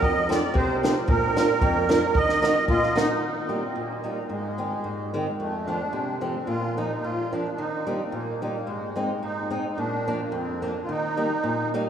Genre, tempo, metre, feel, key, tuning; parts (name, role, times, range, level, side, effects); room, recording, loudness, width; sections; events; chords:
alpine folk, alpine dance band; 110 BPM; 2/4; swing 54% on 8ths; Eb minor, Eb major from 3.2 s; A4 = 435 Hz
musette accordion; melody; 0.0-11.7 s; Ab3 to Eb5; -26 LUFS; right 2 dB
fingerpicked swing-style acoustic guitar; accompaniment; 0.0-11.9 s; F2 to Bb4; -26 LUFS; equal
compact cocktail drum kit; drums; 0.0-3.1 s; hi-hat, kick drum, snare drum; -27 LUFS; equal
wet cathedral reverb, RT60 6.0 s; in a vast, echoing space; -23 LUFS; side -8 dB against mid
0.0-3.2 A section; 3.2-11.9 B section
0.0 F; 1.1 Bb; 2.1 Ebm; 3.2 Eb; 4.3 Ab; 5.4 F; 6.5 Bbsus4; 7.0 Bb; 7.6 Eb; 8.7 Ab; 9.8 Bb; 10.9 Eb